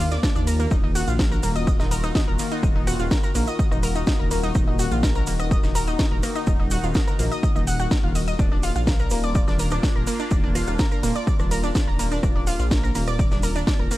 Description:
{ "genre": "melodic techno", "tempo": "125 BPM", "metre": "4/4", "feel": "straight", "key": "Eb harmonic minor", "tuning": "A4 = 438 Hz", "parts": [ { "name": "sweeping resonant pad", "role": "sustained chords", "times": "0.0-14.0 s", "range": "Eb3 to Gb4", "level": "-31 LUFS", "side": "left 3 dB", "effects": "chorus, sidechain pumping" }, { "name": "analog pluck", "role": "arpeggios", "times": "0.0-14.0 s", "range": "Bb3 to Gb6", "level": "-28 LUFS", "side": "right 1 dB", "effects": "chorus, sidechain pumping, digital delay" }, { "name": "dark detuned saw bass", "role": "bass", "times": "0.0-13.9 s", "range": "Eb1 to Eb2", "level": "-24 LUFS", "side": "equal", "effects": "sidechain pumping" }, { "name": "house drum kit", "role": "drums", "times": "0.1-14.0 s", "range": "hi-hat, ride cymbal, rim click, snare drum", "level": "-31 LUFS", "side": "equal", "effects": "overdrive" }, { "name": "tube shaker", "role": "percussion", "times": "0.1-14.0 s", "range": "none", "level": "-36 LUFS", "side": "right 4 dB", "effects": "none" }, { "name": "electronic kick drum", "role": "drums", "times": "0.2-13.8 s", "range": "none", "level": "-22 LUFS", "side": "equal", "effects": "overdrive" } ], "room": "little or no reverb", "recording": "dark, warm production", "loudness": "-19 LUFS", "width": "side -16 dB against mid", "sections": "0.0-14.0 A section", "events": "none", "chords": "0.0 Bb/Eb; 0.7 Ebmadd9; 8.4 Bb/Eb" }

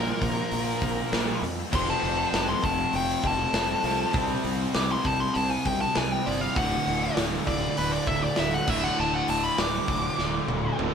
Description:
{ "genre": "hard rock", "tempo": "99 BPM", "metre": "4/4", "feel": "straight", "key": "unclear", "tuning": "A4 = 440 Hz", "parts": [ { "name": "nasal lead guitar with a parked wah", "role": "melody", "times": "0.0-10.8 s", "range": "Bb4 to D6", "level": "-28 LUFS", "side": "left 1 dB", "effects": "overdrive" }, { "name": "high-gain distorted guitar", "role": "riff", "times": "0.0-10.9 s", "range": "D2 to C4", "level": "-31 LUFS", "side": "left 7 dB", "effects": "distortion" }, { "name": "overdriven semi-hollow guitar", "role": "riff", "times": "0.0-10.9 s", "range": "D2 to C4", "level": "-32 LUFS", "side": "right 8 dB", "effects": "none" }, { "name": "tight distorted guitar", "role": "riff", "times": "0.0-10.9 s", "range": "D2 to C4", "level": "-36 LUFS", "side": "equal", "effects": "distortion" }, { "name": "modern bright fingered electric bass", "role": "bass", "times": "0.0-10.9 s", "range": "D1 to F2", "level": "-33 LUFS", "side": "equal", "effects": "none" }, { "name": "big rock drum kit", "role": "drums", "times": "0.2-10.9 s", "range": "crash cymbal, hi-hat, kick drum, snare drum, toms", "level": "-29 LUFS", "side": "equal", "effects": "none" } ], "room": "moderate stone room reverb, RT60 1.2 s", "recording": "band playing live in one room", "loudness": "-23 LUFS", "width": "side -7 dB against mid", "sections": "0.0-10.9 A section", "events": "lead electric guitar solo 0.0-10.9; drum fill 10.2-10.9", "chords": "0.0 Bb5; 1.7 F; 4.1 C5; 6.6 D5" }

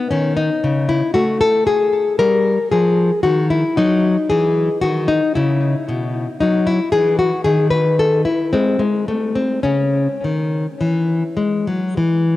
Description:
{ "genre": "classical, baroque-style dance for nylon-string guitar", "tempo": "57 BPM", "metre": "3/4", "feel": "uneven beats, rubato", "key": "C# minor", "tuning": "A4 = 440 Hz", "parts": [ { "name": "nylon-string guitar", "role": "solo", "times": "0.0-12.4 s", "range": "B2 to B4", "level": "-15 LUFS", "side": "left 2 dB", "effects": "cassette tape, analog delay" } ], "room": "moderate lush hall reverb, RT60 3.1 s", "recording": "home recording on cassette", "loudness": "-15 LUFS", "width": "side -15 dB against mid", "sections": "0.0-12.4 A section", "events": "none", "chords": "0.1 F#m69/C#; 2.2 Fmadd9; 3.2 D#madd11; 5.4 Bsus24; 6.4 Emaj9; 8.5 N.C.; 9.7 C#m" }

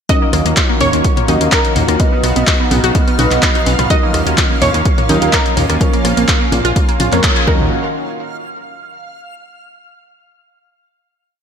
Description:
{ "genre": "progressive house", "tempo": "126 BPM", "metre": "4/4", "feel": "straight", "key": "Eb minor", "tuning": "A4 = 441 Hz", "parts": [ { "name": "wide unison pluck", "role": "melody", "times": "0.1-7.7 s", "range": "Bb4 to Eb5", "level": "-22 LUFS", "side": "equal", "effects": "vintage 12-bit sampler grit, sidechain pumping, ping-pong delay" }, { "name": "soft round pluck", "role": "second line", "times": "0.1-7.7 s", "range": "Bb5 to Eb6", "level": "-26 LUFS", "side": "right 2 dB", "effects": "lush chorus, sidechain pumping, ping-pong delay" }, { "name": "warm analog pad", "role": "sustained chords", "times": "0.1-7.7 s", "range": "Eb3 to Gb4", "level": "-21 LUFS", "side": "right 1 dB", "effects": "chorus, sidechain pumping" }, { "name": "glassy wavetable pluck", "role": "arpeggios", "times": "0.1-7.7 s", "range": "Bb3 to Ab4", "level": "-20 LUFS", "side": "right 1 dB", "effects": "chorus, sidechain pumping, ping-pong delay" }, { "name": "deep mellow chord stab", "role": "stabs", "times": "0.1-7.7 s", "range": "F3 to Eb5", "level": "-21 LUFS", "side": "equal", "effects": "chorus, sidechain pumping, ping-pong delay" }, { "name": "big-room dance drum kit", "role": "drums", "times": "0.1-7.5 s", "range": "handclaps, hi-hat, rim click", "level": "-19 LUFS", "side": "left 1 dB", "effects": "none" }, { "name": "electronic kick drum", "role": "drums", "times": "0.1-7.6 s", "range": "none", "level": "-16 LUFS", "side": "equal", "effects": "overdrive" }, { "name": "backwards swelling texture", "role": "texture", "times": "1.7-7.7 s", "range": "F5 to F6", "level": "-27 LUFS", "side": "right 2 dB", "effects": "built-in reverb, ensemble chorus, sidechain pumping" }, { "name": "fat analog bass", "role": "bass", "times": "0.3-7.7 s", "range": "Bb1 to F2", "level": "-17 LUFS", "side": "equal", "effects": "sidechain pumping" }, { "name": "electronic toms and congas", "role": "percussion", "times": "0.8-7.7 s", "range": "none", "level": "-24 LUFS", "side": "left 1 dB", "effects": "none" } ], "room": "moderate lush hall reverb, RT60 1.8 s, digital ambience", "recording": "dreamy mix soaked in reverb", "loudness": "-11 LUFS", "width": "side -7 dB against mid", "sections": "0.1-7.7 drop; 7.7-9.6 final hit", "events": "drop 0.1-7.7; band accent 7.2", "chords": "0.1 Ebm7; 2.0 B; 3.9 Ebm7; 5.8 Bbm; 7.5 Ebm7; 7.7 N.C." }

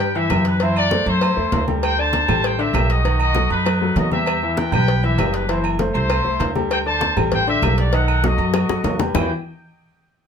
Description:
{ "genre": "latin, salsa", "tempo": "196 BPM", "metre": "4/4", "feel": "straight", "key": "E minor", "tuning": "A4 = 441 Hz", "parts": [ { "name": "bright trumpet section", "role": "melody", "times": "0.0-9.3 s", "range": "D4 to A5", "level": "-22 LUFS", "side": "left 1 dB", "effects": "plate reverb" }, { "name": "clear baby grand piano", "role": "accompaniment", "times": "0.0-9.3 s", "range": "D3 to E5", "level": "-24 LUFS", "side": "left 3 dB", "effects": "none" }, { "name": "upright bass", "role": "bass", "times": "0.0-9.3 s", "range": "F#1 to G2", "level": "-21 LUFS", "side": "right 1 dB", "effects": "none" }, { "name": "congas", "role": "percussion", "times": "0.0-9.2 s", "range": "none", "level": "-26 LUFS", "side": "left 1 dB", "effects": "none" }, { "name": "agogo bells and timbales", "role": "percussion", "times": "0.2-9.2 s", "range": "none", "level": "-27 LUFS", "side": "right 5 dB", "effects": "none" }, { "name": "claves", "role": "percussion", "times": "0.3-9.2 s", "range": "none", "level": "-35 LUFS", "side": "right 7 dB", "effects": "none" }, { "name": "cowbell and bongos", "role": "percussion", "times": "0.3-9.2 s", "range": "none", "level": "-26 LUFS", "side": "left 4 dB", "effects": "none" } ], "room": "moderate studio ambience, RT60 0.5 s", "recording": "none", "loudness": "-16 LUFS", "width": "side -7 dB against mid", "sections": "0.0-9.2 A section; 9.2-10.3 B section", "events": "drum fill 8.5-9.2", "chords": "0.0 Emadd9; 0.6 F#m7b5; 1.8 D7sus4; 3.0 B7; 4.3 Emadd9; 5.5 F#m7b5; 6.7 D7sus4; 7.9 B7; 9.2 Emadd9" }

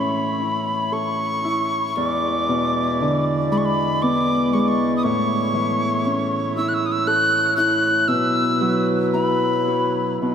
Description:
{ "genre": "celtic folk, Celtic slow air", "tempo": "55-61 BPM", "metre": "3/4", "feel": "rubato", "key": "E major", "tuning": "A4 = 440 Hz", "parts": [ { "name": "wooden whistle", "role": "melody", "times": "0.0-10.2 s", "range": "B5 to F#6", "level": "-21 LUFS", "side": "equal", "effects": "none" }, { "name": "Celtic harp", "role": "accompaniment", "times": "0.0-10.3 s", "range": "E2 to A4", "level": "-22 LUFS", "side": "left 1 dB", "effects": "none" }, { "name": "accordion", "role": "sustained chords", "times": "0.0-10.3 s", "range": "F#3 to D5", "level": "-27 LUFS", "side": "right 1 dB", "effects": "none" } ], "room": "wet cathedral reverb, RT60 5.6 s", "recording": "in a vast, echoing space", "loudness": "-18 LUFS", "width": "side -8 dB against mid", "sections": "0.0-10.3 A section", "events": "none", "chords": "0.0 A; 2.0 E7; 5.0 A; 8.1 Bsus4" }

